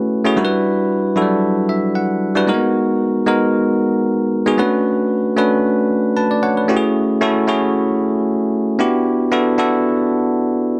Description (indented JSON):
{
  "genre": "amapiano",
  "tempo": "114 BPM",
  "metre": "4/4",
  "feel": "swing 55% on 16ths",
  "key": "unclear",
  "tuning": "A4 = 439 Hz",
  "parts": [
    { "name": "bell-like tine electric piano", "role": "solo", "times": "0.0-10.8 s", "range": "F#3 to A5", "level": "-17 LUFS", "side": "equal", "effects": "none" }
  ],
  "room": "light reverb",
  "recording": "none",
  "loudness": "-17 LUFS",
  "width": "mono",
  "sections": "0.0-6.7 A section; 6.7-10.8 B section",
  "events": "tine electric piano fill 1.4-2.5, 5.9-6.7; drop 6.7-10.8",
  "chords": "0.4 Em9; 2.5 G#m9; 4.6 Bm9; 6.7 F#m9; 8.8 Em9",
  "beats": "| 0.37 0.90 1.43 1.95 | 2.48 3.00 3.53 4.06 | 4.58 5.11 5.64 6.16 | 6.69 7.21 7.74 8.27 | 8.79 9.32 9.85 10.37"
}